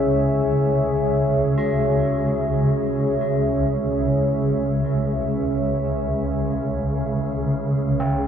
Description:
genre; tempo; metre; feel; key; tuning
dark ambient drone; free time; none; none; C# minor; A4 = 440 Hz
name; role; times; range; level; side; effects
deep dark ambient pad; sustained chords; 0.0-8.3 s; C#4 to E5; -22 LUFS; equal; chorus, built-in reverb
swarming drone; drone; 0.0-8.3 s; C#2 to C#3; -22 LUFS; equal; built-in reverb
gamelan-type bronze metallophone; arpeggios; 1.6-8.3 s; C#3 to F#4; -34 LUFS; equal; ping-pong delay
room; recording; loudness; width
wet huge ambient reverb, RT60 8.6 s; worn, warbling old tape, cassette tape, warbly pitch drift; -19 LUFS; side -8 dB against mid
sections
0.0-8.3 A section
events
fade-in on bronze metallophone 0.0-8.3; filter sweep on synth drone 0.0-8.3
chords
0.0 C#m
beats
free time

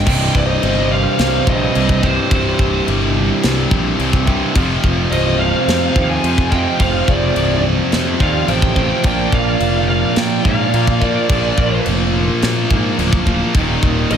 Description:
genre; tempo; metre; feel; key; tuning
heavy metal; 107 BPM; 4/4; straight; C minor; A4 = 438 Hz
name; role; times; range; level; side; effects
bluesy overdriven lead guitar; melody; 0.0-14.2 s; C5 to Ab5; -21 LUFS; right 1 dB; distortion, slapback echo, tape echo
high-gain lead guitar; second line; 0.0-14.2 s; G4 to F5; -25 LUFS; right 4 dB; distortion, slapback echo
heavy high-gain guitar; riff; 0.0-14.2 s; C2 to Bb3; -20 LUFS; right 8 dB; distortion, slapback echo
high-gain distorted guitar; riff; 0.0-14.2 s; C2 to Bb3; -21 LUFS; left 9 dB; distortion, slapback echo
fuzz picked electric bass; bass; 0.0-14.2 s; C1 to Bb2; -20 LUFS; equal; overdrive
heavy high-gain guitar; riff; 0.1-14.2 s; C2 to Bb3; -25 LUFS; equal; distortion, slapback echo
tight metal drum kit; drums; 0.1-14.2 s; crash cymbal, kick drum, snare drum; -19 LUFS; equal; none
room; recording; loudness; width
moderate recital hall reverb, RT60 1.6 s, small room reverb; big arena sound; -13 LUFS; side -8 dB against mid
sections
0.1-14.2 A section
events
none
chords
0.1 Cm; 4.6 Fm; 9.1 Bb; 13.5 Eb5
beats
| 0.06 0.62 1.19 1.75 | 2.31 2.87 3.43 4.00 | 4.56 5.12 5.68 6.24 | 6.80 7.37 7.93 8.49 | 9.05 9.62 10.18 10.74 | 11.30 11.86 12.43 12.99 | 13.55 14.11

